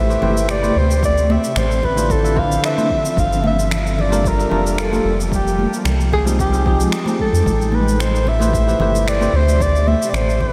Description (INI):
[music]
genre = sunset chillout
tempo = 112 BPM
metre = 4/4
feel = straight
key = unclear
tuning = A4 = 440 Hz
[part]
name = breathy soprano saxophone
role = melody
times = 0.0-10.5 s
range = G4 to F5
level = -22 LUFS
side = equal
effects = analog delay
[part]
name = bell-like tine electric piano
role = accompaniment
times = 0.0-9.3 s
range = D3 to E5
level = -26 LUFS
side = equal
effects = diffuse ambient delay
[part]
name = shimmering ambient pad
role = sustained chords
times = 0.0-10.5 s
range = B2 to G5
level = -27 LUFS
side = equal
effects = chorus, built-in reverb
[part]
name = round analog bass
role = bass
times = 0.0-10.5 s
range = F1 to F2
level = -21 LUFS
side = equal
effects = none
[part]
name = electronic shaker and finger snaps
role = drums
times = 0.1-10.4 s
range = none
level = -31 LUFS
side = equal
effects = none
[part]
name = congas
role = percussion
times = 0.2-10.5 s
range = none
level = -28 LUFS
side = equal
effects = none
[part]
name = electronic kick drum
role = drums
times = 1.0-10.5 s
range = none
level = -25 LUFS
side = equal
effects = none
[sound]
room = moderate huge ambient reverb, RT60 6.9 s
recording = dreamy mix soaked in reverb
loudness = -17 LUFS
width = mono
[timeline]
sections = 0.0-10.5 A section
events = none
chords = 0.0 Am9; 0.8 Dm9; 3.2 Gm9; 5.3 Fm9; 7.5 Am9; 9.3 Dm9